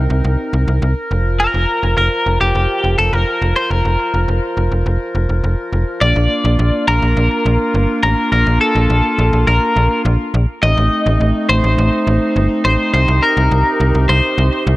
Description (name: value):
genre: synth-pop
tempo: 104 BPM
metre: 4/4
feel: straight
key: unclear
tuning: A4 = 438 Hz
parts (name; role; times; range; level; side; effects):
- clear woodwind section; sustained chords; 0.0-14.8 s; C3 to C5; -20 LUFS; equal; none
- slap-like FM bass; bass; 0.0-14.8 s; F1 to C2; -14 LUFS; equal; none
- twelve-string electric guitar; melody; 1.4-14.6 s; G4 to Eb5; -17 LUFS; left 1 dB; harmonic tremolo, tape echo
room: light reverb, small room ambience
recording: none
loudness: -12 LUFS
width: side -18 dB against mid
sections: 0.0-6.0 A section; 6.0-14.8 B section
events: none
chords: 0.0 Cm7; 1.1 Fsus4; 6.0 Bb; 10.6 Adim; 12.9 Cm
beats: 0.24 0.82 | 1.40 1.98 2.55 3.13 | 3.71 4.28 4.86 5.44 | 6.01 6.59 7.17 7.74 | 8.32 8.90 9.47 10.05 | 10.63 11.21 11.78 12.36 | 12.94 13.51 14.09 14.67